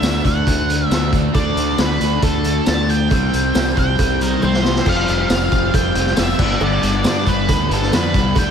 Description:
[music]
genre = classic rock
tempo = 137 BPM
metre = 4/4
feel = straight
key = G mixolydian from 4.9 s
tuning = A4 = 440 Hz
[part]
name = octave-fuzz lead guitar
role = melody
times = 0.0-8.5 s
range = A4 to A5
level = -22 LUFS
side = right 2 dB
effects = distortion, tape echo
[part]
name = picked steel-string acoustic guitar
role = accompaniment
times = 0.0-8.5 s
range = G2 to B4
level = -26 LUFS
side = left 5 dB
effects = none
[part]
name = crunchy overdriven guitar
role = riff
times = 0.0-8.5 s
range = G2 to F4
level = -23 LUFS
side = left 10 dB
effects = none
[part]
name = sludgy distorted guitar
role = riff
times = 0.0-8.5 s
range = G2 to F4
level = -23 LUFS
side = right 10 dB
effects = overdrive
[part]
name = growling fingered electric bass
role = bass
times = 0.0-8.5 s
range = F1 to G2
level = -22 LUFS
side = equal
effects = overdrive
[part]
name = vintage drum kit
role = drums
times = 0.0-8.5 s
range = crash cymbal, hi-hat, kick drum, snare drum, tambourine, toms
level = -20 LUFS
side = equal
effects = none
[part]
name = cowbell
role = percussion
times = 1.3-8.5 s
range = none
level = -32 LUFS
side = right 9 dB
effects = none
[sound]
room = moderate lush hall reverb, RT60 1.6 s, small room ambience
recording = big arena sound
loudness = -14 LUFS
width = side -7 dB against mid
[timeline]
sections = 0.0-4.9 A section; 4.9-8.5 B section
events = drum fill 4.4-4.9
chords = 0.0 D; 3.1 C7; 4.9 Fsus2; 6.4 G

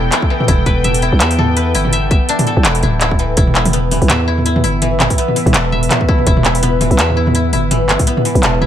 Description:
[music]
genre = half-time drum and bass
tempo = 166 BPM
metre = 4/4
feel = swing 57% on 16ths, half-time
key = E minor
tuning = A4 = 440 Hz
[part]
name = deep dark ambient pad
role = sustained chords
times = 0.0-8.7 s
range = E3 to G5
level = -20 LUFS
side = right 1 dB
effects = chorus, built-in reverb, sidechain pumping
[part]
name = koto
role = arpeggios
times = 0.0-8.7 s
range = E3 to E5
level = -19 LUFS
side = left 3 dB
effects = vintage 12-bit sampler grit, digital delay
[part]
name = growling 808-style bass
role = bass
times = 0.0-8.7 s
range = D1 to E2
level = -15 LUFS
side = equal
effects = tube saturation
[part]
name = drum and bass drum kit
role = drums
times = 0.1-8.7 s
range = handclaps, hi-hat, toms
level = -16 LUFS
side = equal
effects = none
[part]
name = electronic kick drum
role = drums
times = 0.2-8.1 s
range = none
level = -14 LUFS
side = equal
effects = none
[sound]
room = light reverb, digital ambience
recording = none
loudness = -11 LUFS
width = side -10 dB against mid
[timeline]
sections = 0.0-3.4 A section; 3.4-8.7 A section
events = drop 0.0-3.4, 3.4-8.7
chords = 0.0 E5

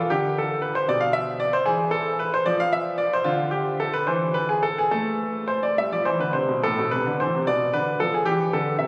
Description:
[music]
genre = classical, baroque-style suite movement for grand piano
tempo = 70-77 BPM (dotted quarters)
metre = 6/8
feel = rubato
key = A minor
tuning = A4 = 441 Hz
[part]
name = bright baby grand piano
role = solo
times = 0.0-8.9 s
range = A2 to F5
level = -23 LUFS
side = equal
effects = none
[sound]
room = wet cathedral reverb, RT60 4.7 s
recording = recorded on a phone in the room, club reverb, compression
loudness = -23 LUFS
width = mono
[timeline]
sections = 0.0-6.6 A section; 6.6-8.9 B section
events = none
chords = 0.1 N.C.; 4.9 Am; 7.4 Bm7b5; 8.2 C69

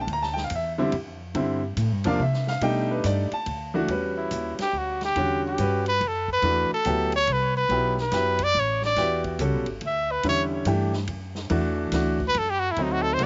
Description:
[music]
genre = modal jazz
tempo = 142 BPM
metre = 3/4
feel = swing 65% on 8ths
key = E dorian from 3.9 s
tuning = A4 = 442 Hz
[part]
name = clear grand piano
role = accompaniment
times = 0.0-13.3 s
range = C3 to Bb5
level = -29 LUFS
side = equal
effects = none
[part]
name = upright bass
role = bass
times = 0.0-13.3 s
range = G1 to C3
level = -31 LUFS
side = equal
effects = none
[part]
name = vintage drum kit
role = drums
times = 0.1-13.3 s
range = hi-hat, kick drum, ride cymbal, snare drum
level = -41 LUFS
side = equal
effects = none
[part]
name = warm trumpet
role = melody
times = 4.2-13.3 s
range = Eb4 to E5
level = -26 LUFS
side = equal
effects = none
[sound]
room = little or no reverb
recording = recorded outdoors, with no room sound, nothing above 7.6 kHz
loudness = -25 LUFS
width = mono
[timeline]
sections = 0.0-3.9 A section; 3.9-13.3 A section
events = trumpet solo 3.9-13.3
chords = 0.0 Gsus2; 2.6 B7alt; 3.9 Em9; 6.4 Bm7; 9.0 Em9; 11.5 Dadd9

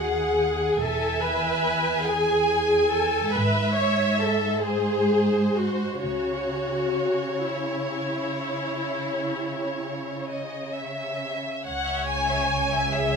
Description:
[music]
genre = classical, slow romantic movement for string orchestra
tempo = 42-48 BPM (dotted quarters)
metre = 12/8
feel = rubato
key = C# minor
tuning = A4 = 439 Hz
[part]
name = rich chamber violin section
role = melody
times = 0.0-13.2 s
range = B#4 to G#5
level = -32 LUFS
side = right 1 dB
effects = none
[part]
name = rich chamber violin section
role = second line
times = 0.0-13.2 s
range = B#4 to G#5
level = -30 LUFS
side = left 2 dB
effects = none
[part]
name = rich studio viola section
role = accompaniment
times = 0.0-13.2 s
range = E4 to C#5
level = -25 LUFS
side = equal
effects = none
[part]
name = warm chamber cello section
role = bass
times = 0.0-13.2 s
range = D#2 to C#3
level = -30 LUFS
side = right 2 dB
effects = none
[part]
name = dark chamber double bass section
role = bass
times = 0.8-13.2 s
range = E1 to C#2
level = -32 LUFS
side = right 1 dB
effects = none
[sound]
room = wet large studio reverb, RT60 1.3 s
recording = minimal, uncompressed stereo recording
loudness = -22 LUFS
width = side -5 dB against mid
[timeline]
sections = 0.0-11.7 A section; 11.7-13.2 A section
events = none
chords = 0.0 D#madd11; 0.8 E; 3.3 Amaj9/G#; 4.7 G#; 6.0 C#m

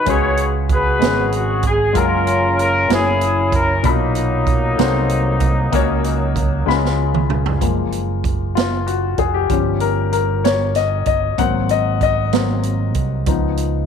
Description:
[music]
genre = slow gospel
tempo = 64 BPM (dotted quarters)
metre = 6/8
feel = straight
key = F# major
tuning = A4 = 440 Hz
[part]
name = mellow horn section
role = melody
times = 0.0-7.0 s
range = F#3 to C#5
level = -18 LUFS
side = left 1 dB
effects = none
[part]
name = warm baby grand piano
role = accompaniment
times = 0.0-13.9 s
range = A#2 to B5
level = -20 LUFS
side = left 10 dB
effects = none
[part]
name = fingered electric bass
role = bass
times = 0.1-13.9 s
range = E#1 to C#2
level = -20 LUFS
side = right 2 dB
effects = none
[part]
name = swinging big-band drum kit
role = drums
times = 0.1-13.7 s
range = hi-hat, kick drum, snare drum, toms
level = -21 LUFS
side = right 6 dB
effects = none
[sound]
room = moderate spring reverb, RT60 1.6 s, small room reverb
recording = 1960s-style stereo with parts hard left and right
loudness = -15 LUFS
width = side -7 dB against mid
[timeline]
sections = 0.0-7.6 A section; 7.6-13.9 B section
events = drum fill 6.7-7.6; grand piano solo 7.6-13.9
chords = 0.1 C#7sus4; 2.0 F#maj9; 2.9 F#7; 3.8 Bmaj7; 4.8 Cdim7; 5.7 F#/C#; 6.7 C#7; 7.6 F#maj7; 9.5 Gm7b5; 11.4 G#7; 13.3 C#7

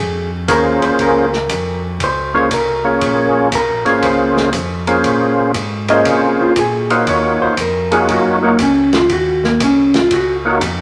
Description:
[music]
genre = soul jazz organ trio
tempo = 118 BPM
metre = 4/4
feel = swing 67% on 8ths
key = Bb minor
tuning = A4 = 442 Hz
[part]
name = vintage hollow-body jazz guitar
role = accompaniment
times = 0.0-10.3 s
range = Bb3 to Eb5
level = -18 LUFS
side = equal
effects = none
[part]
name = mellow tonewheel organ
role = bass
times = 0.0-10.8 s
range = Ab1 to C3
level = -27 LUFS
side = equal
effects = chorus vibrato, slow rotary speaker
[part]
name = percussive tonewheel organ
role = melody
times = 0.5-10.6 s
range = Bb3 to Db5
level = -17 LUFS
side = equal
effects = slow rotary speaker, overdrive, chorus vibrato
[part]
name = warm soul drum kit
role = drums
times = 0.5-10.8 s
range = hi-hat, kick drum, ride cymbal, snare drum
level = -25 LUFS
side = equal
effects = none
[sound]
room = wet large studio reverb, RT60 1.0 s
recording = none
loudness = -14 LUFS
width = mono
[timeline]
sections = 0.0-10.8 A section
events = hollow-body jazz guitar solo 0.0-10.8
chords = 0.0 Bbm9; 7.1 Ebm9

